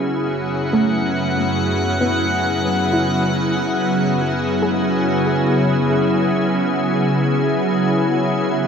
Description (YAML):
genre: ambient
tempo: 71 BPM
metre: 3/4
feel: straight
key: F# minor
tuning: A4 = 440 Hz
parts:
  - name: soft additive organ-like pad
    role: sustained chords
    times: 0.0-8.7 s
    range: F#2 to G#4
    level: -17 LUFS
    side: equal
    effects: ensemble chorus, built-in reverb, shimmer reverb
  - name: soft round pluck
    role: arpeggios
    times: 0.0-6.5 s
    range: A3 to G#4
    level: -25 LUFS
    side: right 1 dB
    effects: none
  - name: drifting glass-harmonics texture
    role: texture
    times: 0.4-5.2 s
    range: F#5 to F#6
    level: -26 LUFS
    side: left 1 dB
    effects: chorus, built-in reverb, shimmer reverb
room: wet huge ambient reverb, RT60 7.8 s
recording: none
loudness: -16 LUFS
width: side -6 dB against mid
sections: 0.0-5.2 A section; 5.2-8.7 B section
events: none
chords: 0.1 B13sus4/F#; 5.2 F#sus2